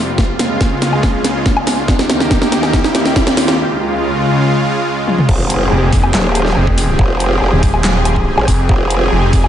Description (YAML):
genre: heavy wobble dubstep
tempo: 141 BPM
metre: 4/4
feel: half-time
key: F minor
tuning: A4 = 439 Hz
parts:
  - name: supersaw pad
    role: sustained chords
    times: 0.0-9.5 s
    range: Db2 to Ab4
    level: -16 LUFS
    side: equal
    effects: sidechain pumping
  - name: riser and impact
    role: sound effects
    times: 0.1-7.0 s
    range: none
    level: -23 LUFS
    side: right 2 dB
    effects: none
  - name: dubstep drum kit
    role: drums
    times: 0.2-9.5 s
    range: crash cymbal, handclaps, hi-hat, snare drum, toms, woodblock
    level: -16 LUFS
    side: equal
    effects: none
  - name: electronic kick drum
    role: drums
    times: 0.2-9.4 s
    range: none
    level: -15 LUFS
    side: equal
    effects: none
  - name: growl bass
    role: bass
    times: 5.3-9.1 s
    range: Eb1 to Ab1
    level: -15 LUFS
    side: equal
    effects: chorus, overdrive
  - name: snarling distorted saw bass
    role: bass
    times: 5.7-9.5 s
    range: Eb1 to F1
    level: -14 LUFS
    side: equal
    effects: distortion, overdrive
room: moderate plate reverb, RT60 1.5 s, digital ambience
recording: dreamy mix soaked in reverb, nothing above 10.8 kHz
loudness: -11 LUFS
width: side -10 dB against mid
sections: 0.0-5.3 A section; 5.3-9.5 B section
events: build-up 0.0-5.3; drum fill 0.0-3.6, 5.1; riser 0.1-3.6; drop 5.3-9.5; impact 5.3-7.0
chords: 0.2 Db; 1.9 Eb; 3.6 Db; 5.3 Fmadd9